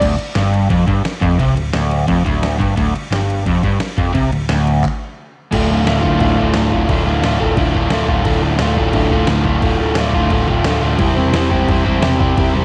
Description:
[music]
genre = garage rock duo or trio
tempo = 175 BPM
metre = 4/4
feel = straight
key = D minor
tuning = A4 = 440 Hz
[part]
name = crunchy overdriven guitar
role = riff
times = 0.0-12.6 s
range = D2 to C5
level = -18 LUFS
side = equal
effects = none
[part]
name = hollow-body short-scale picked electric bass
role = bass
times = 0.0-12.6 s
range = D1 to C2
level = -21 LUFS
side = equal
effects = tube saturation
[part]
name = dusty soul sampler-style drum kit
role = drums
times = 0.0-12.5 s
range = crash cymbal, handclaps, kick drum, snare drum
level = -23 LUFS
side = equal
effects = none
[sound]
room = light reverb, digital ambience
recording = none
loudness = -16 LUFS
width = mono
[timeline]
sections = 0.0-5.5 A section; 5.5-12.6 B section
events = stop 4.8-5.5; kick and snare drop out 10.8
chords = 0.0 Dm; 11.0 C/E

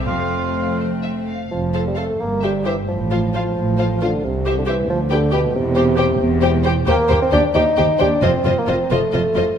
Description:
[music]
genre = quick classical-period movement for symphony orchestra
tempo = 82-93 BPM (dotted quarters)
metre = 6/8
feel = rubato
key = F major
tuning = A4 = 441 Hz
[part]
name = dark studio violin section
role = melody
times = 0.0-9.4 s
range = C5 to G5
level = -28 LUFS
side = left 4 dB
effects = none
[part]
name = dark studio violin section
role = second line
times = 0.0-9.4 s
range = C4 to C5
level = -25 LUFS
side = left 6 dB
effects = none
[part]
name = rich studio viola section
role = accompaniment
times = 0.0-9.4 s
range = A3 to A4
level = -26 LUFS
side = equal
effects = none
[part]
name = dark studio cello section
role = bass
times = 0.0-9.4 s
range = C2 to A2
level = -24 LUFS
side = right 2 dB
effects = none
[part]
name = dark studio double bass section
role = bass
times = 0.0-9.4 s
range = E1 to Eb2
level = -23 LUFS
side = right 2 dB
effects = none
[part]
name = mellow cor anglais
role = second line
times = 0.1-0.8 s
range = F4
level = -26 LUFS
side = right 5 dB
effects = none
[part]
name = dark bassoon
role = accompaniment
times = 1.5-9.6 s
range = B2 to Eb4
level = -19 LUFS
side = equal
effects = none
[sound]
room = moderate scoring stage reverb, RT60 1.6 s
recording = none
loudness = -16 LUFS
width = side -8 dB against mid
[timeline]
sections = 0.0-1.5 A section; 1.5-9.6 B section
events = none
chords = 0.1 F; 2.2 C/G; 2.9 F/A; 4.2 C; 4.9 G/D; 5.5 C/E; 6.9 Cm/Eb; 8.2 F7

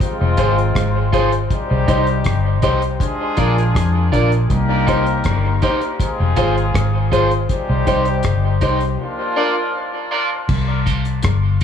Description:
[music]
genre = dub reggae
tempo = 80 BPM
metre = 4/4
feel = straight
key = C minor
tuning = A4 = 439 Hz
[part]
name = clear horn section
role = second line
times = 0.0-10.1 s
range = F3 to Bb4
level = -24 LUFS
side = left 2 dB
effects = high-pass filter, dub echo
[part]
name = cloth-damped thuddy drum kit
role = drums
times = 0.0-11.6 s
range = crash cymbal, hi-hat, kick drum, rim click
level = -21 LUFS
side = equal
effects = none
[part]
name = vintage muted fingered electric bass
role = bass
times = 0.2-11.6 s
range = F1 to F2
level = -17 LUFS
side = left 1 dB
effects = none
[part]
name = electric guitar at the edge of break-up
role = accompaniment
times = 0.4-11.6 s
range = Eb4 to D5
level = -23 LUFS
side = right 5 dB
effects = warbly pitch drift, high-pass filter, dub echo
[part]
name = warm grand piano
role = stabs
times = 0.4-10.3 s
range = D4 to C5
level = -23 LUFS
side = left 5 dB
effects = high-pass filter, dub echo
[part]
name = mellow tonewheel organ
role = accompaniment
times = 10.7-11.6 s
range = none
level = barely audible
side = none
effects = none
[sound]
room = moderate spring reverb, RT60 2.6 s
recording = echo-heavy mix, studio ambience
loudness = -15 LUFS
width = side -8 dB against mid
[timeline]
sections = 0.0-10.5 A section; 10.5-11.6 B section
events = filter sweep 7.5-11.6; break 9.0-10.5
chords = 0.0 Fm; 1.5 Cm; 3.0 Bb; 4.5 Cm; 6.0 Fm; 7.5 Cm; 9.0 Bb; 10.5 Cm

